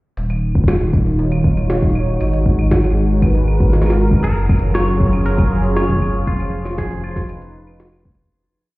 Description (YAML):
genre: IDM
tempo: 118 BPM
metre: 4/4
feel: straight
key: Eb minor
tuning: A4 = 440 Hz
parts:
  - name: warm analog pad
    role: sustained chords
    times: 0.2-8.3 s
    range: Eb3 to Db5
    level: -20 LUFS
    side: equal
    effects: chorus
  - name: warm sub bass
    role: bass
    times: 0.2-8.3 s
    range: Eb1 to Ab1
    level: -18 LUFS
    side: equal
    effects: none
  - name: jungle sampler-style drum kit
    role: drums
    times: 0.2-8.2 s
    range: claves, hi-hat, snare drum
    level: -25 LUFS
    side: right 1 dB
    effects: small room ambience, digital delay
  - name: electronic kick drum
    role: drums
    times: 0.6-8.2 s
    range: none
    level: -17 LUFS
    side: equal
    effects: small room ambience
  - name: semi-hollow electric guitar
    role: melody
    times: 4.2-7.8 s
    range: F4 to Db5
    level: -25 LUFS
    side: equal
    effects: spring reverb, ping-pong delay
room: light reverb, digital ambience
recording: heard muffled through a wall, stone room reverb, EQ, nothing above 10.9 kHz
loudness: -14 LUFS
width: side -20 dB against mid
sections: 0.2-8.3 groove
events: fade-out 5.6-8.3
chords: 0.2 Ebm7; 2.2 Abm7; 4.2 Gbmaj7; 6.3 Db7/F